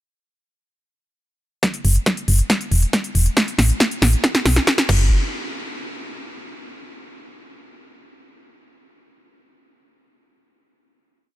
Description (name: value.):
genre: uplifting trance.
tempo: 138 BPM.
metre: 4/4.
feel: straight.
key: F# minor.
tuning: A4 = 440 Hz.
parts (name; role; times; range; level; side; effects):
big-room dance drum kit; drums; 1.6-5.0 s; crash cymbal, hi-hat, snare drum; -20 LUFS; equal; overdrive.
electronic kick drum; drums; 1.6-5.0 s; none; -21 LUFS; equal; overdrive, high-pass filter on kick.
solid FM bass; bass; 1.8-5.1 s; E1 to B1; -16 LUFS; equal; sidechain pumping.
room: digital ambience.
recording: none.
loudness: -16 LUFS.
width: side -16 dB against mid.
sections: 1.6-5.1 build; 5.1-6.8 final hit.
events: build-up 1.6-5.1; drum fill 1.6-5.1.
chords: none.